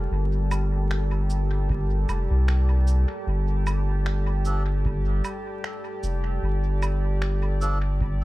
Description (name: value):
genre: ambient dub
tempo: 76 BPM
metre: 4/4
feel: swing 55% on 16ths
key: G minor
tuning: A4 = 435 Hz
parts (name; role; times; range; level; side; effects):
- deep dark ambient pad; sustained chords; 0.0-8.2 s; G3 to A5; -32 LUFS; equal; chorus, built-in reverb
- round analog bass; bass; 0.0-8.2 s; F1 to C2; -22 LUFS; equal; none
- electronic cabasa, woodblock and finger snaps; drums; 0.5-7.8 s; none; -36 LUFS; right 2 dB; small room ambience, dub echo
- electronic kick drum; drums; 1.7-8.2 s; none; -31 LUFS; equal; none
- melodica; stabs; 4.5-7.8 s; F3 to A4; -35 LUFS; right 2 dB; dub echo
room: little or no reverb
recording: echo-heavy mix, vinyl crackle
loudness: -22 LUFS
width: side -18 dB against mid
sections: 0.0-8.2 A section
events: none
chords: 0.0 Gm; 3.3 Dm